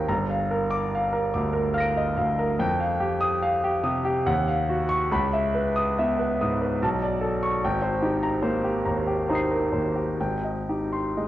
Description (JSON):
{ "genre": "classical, impressionist solo piano", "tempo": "71 BPM", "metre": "3/4", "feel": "uneven beats, rubato", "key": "unclear", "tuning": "A4 = 440 Hz", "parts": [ { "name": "clear concert grand piano", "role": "solo", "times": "0.0-11.3 s", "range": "G1 to D7", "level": "-22 LUFS", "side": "equal", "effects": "none" } ], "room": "moderate concert hall reverb, RT60 1.8 s", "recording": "worn, warbling old tape, cassette tape, warbly pitch drift", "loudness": "-22 LUFS", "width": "side -14 dB against mid", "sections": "0.0-11.3 A section", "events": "none", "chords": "0.1 Gm7; 2.6 Fsus2; 4.3 Ebm9; 5.1 Dbm9; 6.8 Bm9; 7.6 Abmaj9; 10.2 Abmaj7" }